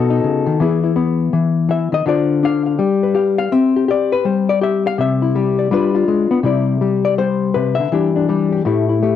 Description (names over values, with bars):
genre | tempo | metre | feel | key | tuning
solo jazz | 164 BPM | 4/4 | swing 63% on 8ths | C major | A4 = 440 Hz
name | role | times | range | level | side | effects
hollow-body jazz guitar | solo | 0.0-9.2 s | A2 to F5 | -14 LUFS | left 5 dB | none
room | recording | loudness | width
wet studio reverb, RT60 0.6 s | home recording on cassette | -14 LUFS | side -10 dB against mid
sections
0.0-6.4 A section; 6.4-9.2 B section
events
hollow-body jazz guitar solo 0.0-6.4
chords
0.0 B7; 0.6 Emaj7; 2.1 Dm7; 2.8 G7; 3.5 Cadd9; 5.7 G7b9; 6.4 Cmaj9; 7.9 Em7; 8.6 A7(no3)